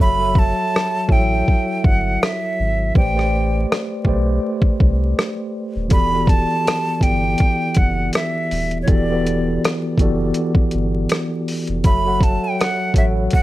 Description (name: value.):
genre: lo-fi hip hop.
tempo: 81 BPM.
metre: 4/4.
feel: swing 56% on 16ths.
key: E minor.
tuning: A4 = 441 Hz.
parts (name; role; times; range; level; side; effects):
jazz flute; melody; 0.0-13.4 s; C#5 to B5; -21 LUFS; right 1 dB; none.
mellow tine electric piano; accompaniment; 0.0-13.4 s; E3 to F#5; -22 LUFS; equal; medium stereo tremolo.
soft dub sub bass; bass; 0.0-13.3 s; D#1 to C2; -22 LUFS; equal; none.
boom bap sampler-style drum kit; drums; 0.4-13.4 s; hi-hat, kick drum, rim click; -16 LUFS; equal; none.
room: light reverb.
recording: vinyl crackle.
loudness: -16 LUFS.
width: side -16 dB against mid.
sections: 0.0-13.4 A section.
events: break 0.0-5.9.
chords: 0.0 F#m7; 3.0 Am11; 5.9 Em11; 11.8 F#m7.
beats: 0.73 1.47 2.21 | 2.95 3.69 4.43 5.17 | 5.92 6.66 7.40 8.14 | 8.88 9.62 10.36 11.10 | 11.84 12.58 13.32.